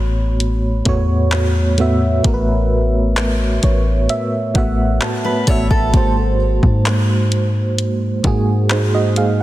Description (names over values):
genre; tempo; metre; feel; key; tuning
contemporary R&B; 65 BPM; 4/4; straight; unclear; A4 = 440 Hz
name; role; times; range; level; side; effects
FM electric piano with tremolo; accompaniment; 0.0-9.4 s; G#2 to B5; -18 LUFS; right 2 dB; none
warm 808-style bass; bass; 0.0-9.4 s; G#1 to G#2; -17 LUFS; equal; none
smooth R&B drum kit; drums; 0.4-9.4 s; handclaps, hi-hat, kick drum; -20 LUFS; equal; none
fingerpicked steel-string acoustic guitar; arpeggios; 5.2-6.1 s; A4 to C#5; -24 LUFS; left 1 dB; digital delay
room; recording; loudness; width
little or no reverb; dense, heavily limited modern master; -14 LUFS; side -15 dB against mid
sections
0.0-9.4 A section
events
FM electric piano fill 3.2-5.9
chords
0.0 A69; 5.9 G#7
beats
0.40 1.32 | 2.25 3.17 4.09 5.01 | 5.94 6.86 7.78 8.71